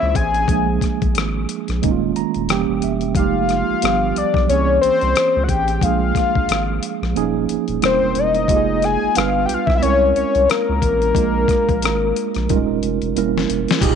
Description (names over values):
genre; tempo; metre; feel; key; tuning
R&B, neo-soul; 90 BPM; 4/4; swing 57% on 16ths; unclear; A4 = 440 Hz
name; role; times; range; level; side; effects
fat analog lead; melody; 0.0-13.2 s; Bb4 to Ab5; -18 LUFS; left 5 dB; chorus
tine electric piano; accompaniment; 0.0-14.0 s; Bb2 to Bb5; -21 LUFS; right 14 dB; overdrive, medium stereo tremolo
saturated sub bass; bass; 0.0-14.0 s; Eb1 to Db2; -23 LUFS; equal; none
dusty soul sampler-style drum kit; drums; 0.2-14.0 s; crash cymbal, hi-hat, kick drum, rim click, snare drum; -22 LUFS; left 3 dB; none
congas; percussion; 13.8-14.0 s; none; -29 LUFS; left 12 dB; none
room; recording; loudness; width
moderate spring reverb, RT60 2.4 s; 1960s-style stereo with parts hard left and right, nothing above 10.8 kHz; -16 LUFS; side -7 dB against mid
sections
0.0-13.8 A section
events
tine electric piano fill 1.8-3.1; drum fill 13.1-13.8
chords
0.5 Bb7; 1.8 Eb9sus4; 2.5 Edim7; 3.1 Fm11; 3.8 G7; 4.5 C7b9b13; 5.8 Bb7; 7.1 Eb9sus4; 7.8 Edim7; 8.5 Fm11; 9.1 G7; 9.8 C7b9b13; 11.1 Bb7; 12.5 Eb9sus4; 13.1 Edim7